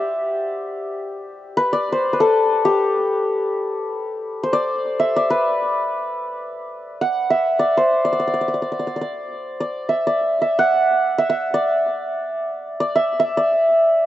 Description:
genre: Persian modal ensemble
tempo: free time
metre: none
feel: none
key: unclear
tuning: A4 = 440 Hz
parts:
  - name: santur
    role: solo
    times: 0.0-14.1 s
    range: G4 to F#5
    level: -18 LUFS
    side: equal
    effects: slapback echo
room: little or no reverb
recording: recorded outdoors, with no room sound, nothing above 7.9 kHz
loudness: -18 LUFS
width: side -13 dB against mid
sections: 0.0-4.2 A section; 4.2-14.1 A section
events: none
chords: none

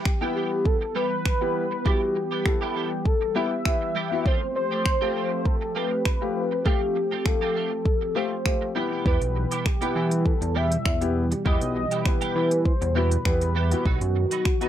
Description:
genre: dance-pop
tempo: 100 BPM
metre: 4/4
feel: straight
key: E harmonic minor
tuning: A4 = 442 Hz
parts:
  - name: warm velvety synth lead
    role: melody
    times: 0.0-14.7 s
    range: F#4 to E5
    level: -27 LUFS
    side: equal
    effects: chorus, slapback echo
  - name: warm analog pad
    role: sustained chords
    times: 0.0-14.7 s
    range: B2 to G4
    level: -33 LUFS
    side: equal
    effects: chorus, sidechain pumping
  - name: twelve-string electric guitar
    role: riff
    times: 0.0-14.7 s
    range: F3 to G4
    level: -32 LUFS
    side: right 7 dB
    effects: ensemble chorus
  - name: deep house drum kit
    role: drums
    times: 0.1-14.7 s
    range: finger snaps, hi-hat, kick drum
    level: -24 LUFS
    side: equal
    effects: none
  - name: warm baby grand piano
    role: accompaniment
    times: 0.2-14.7 s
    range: A3 to A4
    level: -30 LUFS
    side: left 6 dB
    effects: sidechain pumping
  - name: chorused synth bass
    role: bass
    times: 9.1-14.3 s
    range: B1 to E3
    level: -24 LUFS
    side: equal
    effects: sidechain pumping
room: little or no reverb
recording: dry, close 1970s-style studio recording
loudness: -22 LUFS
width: side -11 dB against mid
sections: 0.0-14.7 A section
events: none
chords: 0.0 Em; 4.3 Fadd9; 8.8 Em; 13.9 B

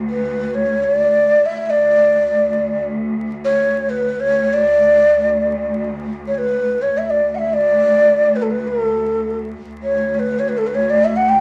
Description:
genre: Persian modal ensemble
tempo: free time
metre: none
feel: none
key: unclear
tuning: A4 = 440 Hz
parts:
  - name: rich symphonic cello section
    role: drone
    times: 0.0-11.4 s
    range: D2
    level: -27 LUFS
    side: equal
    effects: none
  - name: breathy ney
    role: melody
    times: 0.1-11.4 s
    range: A4 to G5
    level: -17 LUFS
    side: equal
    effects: none
room: wet studio reverb, RT60 0.6 s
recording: vinyl crackle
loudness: -17 LUFS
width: mono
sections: 0.0-11.4 A section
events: none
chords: none

